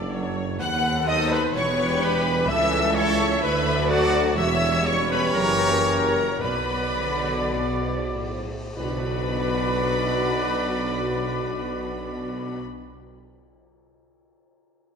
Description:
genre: classical, dramatic, fast romantic movement for symphony orchestra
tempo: 98-129 BPM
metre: 4/4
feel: rubato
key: B minor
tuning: A4 = 444 Hz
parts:
  - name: rich symphonic viola section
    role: accompaniment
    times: 0.0-12.6 s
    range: D4 to E5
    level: -32 LUFS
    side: right 1 dB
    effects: none
  - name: mellow French horn section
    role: sustained chords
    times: 0.0-12.6 s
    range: A3 to A4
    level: -31 LUFS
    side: left 4 dB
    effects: none
  - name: warm trombone section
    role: sustained chords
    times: 0.0-12.6 s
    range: B2 to G3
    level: -34 LUFS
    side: right 3 dB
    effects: none
  - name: clear trumpet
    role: stabs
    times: 0.0-12.6 s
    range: G4 to D5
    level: -30 LUFS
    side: equal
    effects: none
  - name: clear symphonic cello section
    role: bass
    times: 0.0-12.6 s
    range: C#2 to D3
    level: -31 LUFS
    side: right 1 dB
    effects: none
  - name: mellow tuba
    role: bass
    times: 0.0-12.6 s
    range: E1 to D#2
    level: -31 LUFS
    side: right 3 dB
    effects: none
  - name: rich symphonic double bass section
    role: bass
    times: 0.0-12.6 s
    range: E1 to D#2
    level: -32 LUFS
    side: right 3 dB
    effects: none
  - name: rich symphonic violin section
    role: melody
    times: 0.6-12.6 s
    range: F#5 to F#6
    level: -30 LUFS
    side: left 2 dB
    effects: none
  - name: clear oboe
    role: second line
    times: 0.6-12.6 s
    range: F#4 to F#5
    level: -32 LUFS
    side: equal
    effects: none
  - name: clear symphonic violin section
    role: second line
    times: 0.6-12.6 s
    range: F#4 to F#5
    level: -33 LUFS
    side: left 2 dB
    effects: none
  - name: dark clarinet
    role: second line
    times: 0.6-12.6 s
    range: F#4 to F#5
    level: -32 LUFS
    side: left 3 dB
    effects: none
  - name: mellow large flute ensemble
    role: second line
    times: 0.6-12.6 s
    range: F#4 to F#5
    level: -31 LUFS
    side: equal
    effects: none
  - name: cymbal swell and tam-tam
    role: percussion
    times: 4.4-11.1 s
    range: none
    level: -39 LUFS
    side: left 2 dB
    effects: none
room: wet scoring stage reverb, RT60 1.7 s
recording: minimal, uncompressed stereo recording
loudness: -21 LUFS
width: side -6 dB against mid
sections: 0.0-8.8 A section; 8.8-13.5 B section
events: slowing down 3.4-8.8; band accent 8.8-9.4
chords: 0.0 D/F#; 0.6 B7/D#; 1.5 Em7; 2.5 A7/C#; 3.4 D; 4.4 C#dim/E; 5.4 F#7b9; 6.4 Bm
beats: 0.14 | 0.61 1.08 1.55 2.02 | 2.49 2.96 3.43 3.90 | 4.38 4.86 5.35 5.87 | 6.42 7.00 7.57 8.16 | 8.77 9.35 9.94 10.52 | 11.10 11.70 12.29

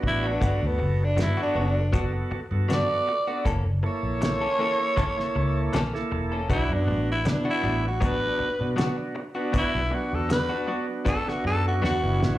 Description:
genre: straight-eighth soul blues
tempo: 79 BPM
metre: 4/4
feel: swing 54% on 16ths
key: B minor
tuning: A4 = 441 Hz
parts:
  - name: bright tonewheel organ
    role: accompaniment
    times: 0.0-12.4 s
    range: A#3 to A4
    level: -31 LUFS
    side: right 3 dB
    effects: overdrive, slow rotary speaker, plate reverb, slapback echo
  - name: direct-recorded clean electric guitar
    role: stabs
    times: 0.0-12.2 s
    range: E3 to A4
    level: -32 LUFS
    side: left 4 dB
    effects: tremolo, plate reverb, slapback echo
  - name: vintage muted fingered electric bass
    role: bass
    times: 0.0-12.4 s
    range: E1 to B2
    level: -26 LUFS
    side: equal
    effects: none
  - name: cloth-damped thuddy drum kit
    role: drums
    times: 0.0-12.4 s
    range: hi-hat, kick drum, snare drum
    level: -27 LUFS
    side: equal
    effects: none
  - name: growling tenor saxophone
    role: melody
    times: 0.1-12.4 s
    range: B3 to D5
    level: -27 LUFS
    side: equal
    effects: plate reverb, slapback echo
room: light reverb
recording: live gig heard through the venue's PA, club reverb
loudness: -23 LUFS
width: side -15 dB against mid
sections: 0.0-12.4 A section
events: tenor saxophone solo 0.0-12.4; drum fill 11.8-12.4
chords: 0.4 Gmaj7; 3.5 F#7#9 (rootless); 6.5 Bm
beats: | 0.42 1.18 1.94 2.69 | 3.46 4.21 4.97 5.74 | 6.50 7.26 8.02 8.78 | 9.54 10.30 11.06 11.82

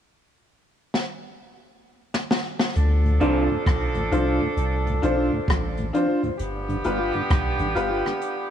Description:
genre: dub reggae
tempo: 66 BPM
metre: 4/4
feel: swing 64% on 16ths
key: D dorian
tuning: A4 = 440 Hz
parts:
  - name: jazz brush drum kit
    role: drums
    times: 0.9-8.5 s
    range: hi-hat, kick drum, rim click, snare drum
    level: -25 LUFS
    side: equal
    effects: none
  - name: mellow horn section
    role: second line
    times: 2.8-8.5 s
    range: D3 to A4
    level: -28 LUFS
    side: right 2 dB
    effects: high-pass filter, dub echo
  - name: soft dub sub bass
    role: bass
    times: 2.8-8.0 s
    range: G1 to D2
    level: -24 LUFS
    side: equal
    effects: none
  - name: mellow tonewheel organ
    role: accompaniment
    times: 3.0-8.1 s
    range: D2 to F4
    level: -31 LUFS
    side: left 2 dB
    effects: slow rotary speaker, high-pass filter, dub echo
  - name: electric guitar through a small old amp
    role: accompaniment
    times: 3.2-3.4 s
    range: C4 to D5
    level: -27 LUFS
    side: right 8 dB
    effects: dub echo
  - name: clear upright piano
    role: stabs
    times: 3.2-8.0 s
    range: D4 to C5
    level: -26 LUFS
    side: left 1 dB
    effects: high-pass filter, dub echo
room: light reverb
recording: none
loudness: -21 LUFS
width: side -9 dB against mid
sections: 0.0-2.7 A section; 2.7-8.5 B section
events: drum fill 0.9-2.7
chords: 0.0 N.C.; 2.7 Dm7; 6.4 G7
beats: 0.02 0.93 1.84 | 2.75 3.66 4.57 5.48 | 6.39 7.30 8.21

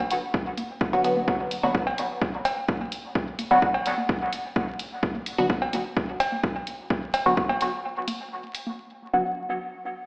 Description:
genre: dub techno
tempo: 128 BPM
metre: 4/4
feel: straight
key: B minor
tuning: A4 = 440 Hz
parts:
  - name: electronic hi-hat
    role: drums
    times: 0.1-8.6 s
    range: none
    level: -36 LUFS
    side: equal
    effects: low-pass filter on hats, low-pass filter on room, dub echo
  - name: electronic kick drum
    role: drums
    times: 0.3-7.5 s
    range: none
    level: -26 LUFS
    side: equal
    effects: none
  - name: congas and cowbell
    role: percussion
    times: 0.6-8.8 s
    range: none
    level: -30 LUFS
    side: equal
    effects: sidechain pumping on perc, dub echo
  - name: filtered dub chord stab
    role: stabs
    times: 0.9-9.2 s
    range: D3 to F#4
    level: -25 LUFS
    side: equal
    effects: phaser, sidechain pumping, dub echo
room: wet digital room reverb, RT60 1.2 s, digital ambience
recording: played on a big sound system in a bare room, stone room reverb, vinyl crackle, AM radio sound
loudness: -23 LUFS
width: side -29 dB against mid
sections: 0.0-8.8 A section; 8.8-10.1 B section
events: break 7.8-8.8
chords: 0.0 Bm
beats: 0.34 0.81 | 1.28 1.75 2.22 2.69 | 3.15 3.62 4.09 4.56 | 5.03 5.50 5.97 6.43 | 6.90 7.37 7.84 8.31 | 8.78

